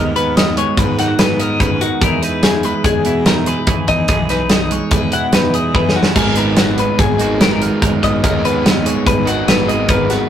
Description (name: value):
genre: math rock and midwest emo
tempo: 145 BPM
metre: 5/4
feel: straight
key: unclear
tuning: A4 = 441 Hz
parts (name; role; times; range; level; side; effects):
- twelve-string electric guitar; accompaniment; 0.0-10.3 s; G#2 to A#4; -20 LUFS; right 4 dB; none
- twelve-string electric guitar; arpeggios; 0.0-10.3 s; F#4 to F#5; -18 LUFS; left 4 dB; none
- fuzz picked electric bass; bass; 0.0-10.2 s; G#1 to G#2; -22 LUFS; equal; overdrive
- modern studio drum kit; drums; 0.2-10.2 s; crash cymbal, hi-hat, kick drum, snare drum; -16 LUFS; equal; none
- overdriven semi-hollow guitar; riff; 6.2-10.3 s; G#2 to D#4; -20 LUFS; equal; none
room: moderate small room reverb, RT60 0.5 s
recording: rough rehearsal-room recording, tube saturation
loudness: -12 LUFS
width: side -9 dB against mid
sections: 0.0-10.3 A section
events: drum fill 5.7-6.2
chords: 0.0 G#m9; 2.0 Emaj7; 6.2 G#m9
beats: 0.36 0.78 1.19 1.60 | 2.02 2.43 2.85 3.26 3.68 | 4.09 4.50 4.92 5.33 5.75 | 6.16 6.58 6.99 7.41 7.82 | 8.23 8.65 9.06 9.48 9.89